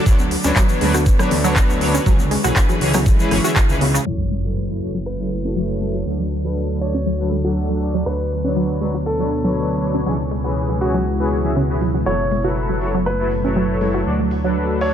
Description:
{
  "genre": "progressive house",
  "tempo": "120 BPM",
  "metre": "4/4",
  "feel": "straight",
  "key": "F# minor",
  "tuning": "A4 = 441 Hz",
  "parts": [
    { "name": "lush unison pad", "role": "sustained chords", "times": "0.0-14.9 s", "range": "B2 to F#4", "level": "-25 LUFS", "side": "equal", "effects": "chorus, vintage 12-bit sampler grit, sidechain pumping" },
    { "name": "soft supersaw", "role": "stabs", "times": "0.0-14.9 s", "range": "E3 to F#5", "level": "-24 LUFS", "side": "left 2 dB", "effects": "sidechain pumping, low-pass filter, digital delay" },
    { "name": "fat analog bass", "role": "bass", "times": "0.1-14.9 s", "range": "F#1 to D2", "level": "-23 LUFS", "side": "equal", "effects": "tube saturation, sidechain pumping" },
    { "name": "electronic kick drum", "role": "drums", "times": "0.1-3.7 s", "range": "none", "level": "-16 LUFS", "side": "equal", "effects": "small room ambience" },
    { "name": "tube shaker", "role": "percussion", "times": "0.1-4.0 s", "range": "none", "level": "-30 LUFS", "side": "left 4 dB", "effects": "none" },
    { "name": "congas", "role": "percussion", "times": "0.2-3.9 s", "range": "none", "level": "-30 LUFS", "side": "left 8 dB", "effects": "none" },
    { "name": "pop drum kit", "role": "drums", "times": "0.3-14.9 s", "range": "handclaps, hi-hat, rim click", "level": "-24 LUFS", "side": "equal", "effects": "sidechain pumping on hats, small room ambience" },
    { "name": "wide unison pluck", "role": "arpeggios", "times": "0.4-14.5 s", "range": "C#3 to F#4", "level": "-24 LUFS", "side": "right 1 dB", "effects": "sidechain pumping, digital delay" },
    { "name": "warm grand piano", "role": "melody", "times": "4.1-14.9 s", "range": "F#4 to C#5", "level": "-27 LUFS", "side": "equal", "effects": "sidechain pumping, digital delay" },
    { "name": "impact", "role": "sound effects", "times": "4.1-6.1 s", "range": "none", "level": "-29 LUFS", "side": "equal", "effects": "none" }
  ],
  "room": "light reverb, digital ambience",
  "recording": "low-pass filter",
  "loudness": "-16 LUFS",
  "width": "side -9 dB against mid",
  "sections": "0.0-4.1 A section; 4.1-14.9 B section",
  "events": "filter sweep on synth pluck 0.0-4.1; impact 4.1-6.1; filter sweep on supersaw synth 4.1-14.9; filter sweep on analog synth pad 4.1-14.9; filter sweep 4.1-14.9",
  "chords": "0.1 Bmadd9/D; 2.1 C#m; 4.1 F#m7; 6.1 D; 8.1 Bmadd9/D; 10.1 C#m; 12.1 F#m7; 14.1 D"
}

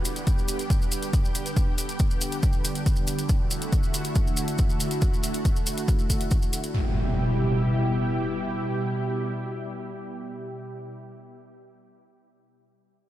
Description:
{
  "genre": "uplifting trance",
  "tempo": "139 BPM",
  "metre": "4/4",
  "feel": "straight",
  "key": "E minor",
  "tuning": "A4 = 440 Hz",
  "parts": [
    { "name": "analog string pad", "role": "sustained chords", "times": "0.0-10.9 s", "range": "B2 to G4", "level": "-28 LUFS", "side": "equal", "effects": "ensemble chorus, sidechain pumping" },
    { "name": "maracas", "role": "percussion", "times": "0.0-6.7 s", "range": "none", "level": "-35 LUFS", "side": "right 1 dB", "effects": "none" },
    { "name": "electronic hi-hat", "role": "drums", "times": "0.1-6.7 s", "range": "none", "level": "-36 LUFS", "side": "left 3 dB", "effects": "sidechain pumping on hats, sidechain pumping on perc" },
    { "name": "electronic kick drum", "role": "drums", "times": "0.3-6.4 s", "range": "none", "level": "-23 LUFS", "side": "equal", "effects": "none" },
    { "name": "impact", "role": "sound effects", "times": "6.7-11.0 s", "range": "none", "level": "-30 LUFS", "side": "equal", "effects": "none" }
  ],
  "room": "light reverb",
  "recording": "none",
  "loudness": "-23 LUFS",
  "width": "side -13 dB against mid",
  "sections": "0.0-6.7 A section; 6.7-10.2 B section",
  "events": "none",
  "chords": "0.0 G; 3.3 Dadd9; 6.7 Em"
}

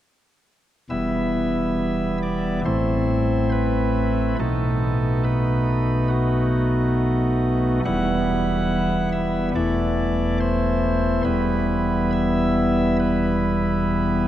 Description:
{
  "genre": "classical, chorale-style piece for pipe organ",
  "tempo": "70 BPM",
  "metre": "4/4",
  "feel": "rubato",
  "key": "E minor",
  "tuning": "A4 = 440 Hz",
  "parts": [
    { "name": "chamber organ, cornet", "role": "solo", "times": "0.9-14.3 s", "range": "E1 to F#5", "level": "-19 LUFS", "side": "equal", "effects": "none" }
  ],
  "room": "wet cathedral reverb, RT60 4.4 s",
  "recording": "dark, warm production",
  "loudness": "-19 LUFS",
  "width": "side -12 dB against mid",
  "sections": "0.9-14.3 A section",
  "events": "none",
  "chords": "0.9 Em; 2.7 Am; 4.4 B7; 7.8 Em; 9.5 Am/E; 11.2 Em"
}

